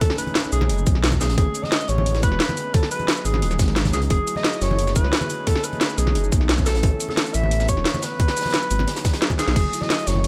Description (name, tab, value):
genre	liquid drum and bass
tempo	176 BPM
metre	4/4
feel	straight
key	unclear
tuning	A4 = 439 Hz
part	mellow alto saxophone	melody	0.0-10.3 s	G#4 to E5	-29 LUFS	equal	vintage 12-bit sampler grit, dub echo
part	warm analog pad	sustained chords	0.0-10.3 s	E3 to G#4	-34 LUFS	equal	lush chorus, sidechain pumping
part	crunchy breakbeat drum kit	drums	0.0-10.3 s	hi-hat, snare drum	-36 LUFS	equal	high-pass filter on hats, high-pass filter on snare, high-pass filter on room
part	drum and bass drum kit	drums	0.0-10.3 s	crash cymbal, hi-hat, shaker, snare drum	-26 LUFS	equal	none
part	electronic kick drum	drums	0.0-9.6 s	none	-23 LUFS	equal	none
part	congas	percussion	0.0-10.2 s	none	-32 LUFS	equal	none
part	dark detuned saw bass	bass	0.5-10.3 s	D#1 to C#2	-24 LUFS	equal	none
room	small room ambience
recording	none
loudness	-21 LUFS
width	mono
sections	0.0-10.3 A section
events	drum fill 9.4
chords	0.0 B13; 1.2 Amaj9; 2.7 G#m7; 4.1 F#m9; 5.3 B13; 6.7 Aadd9; 8.2 G#m7; 9.6 F#m9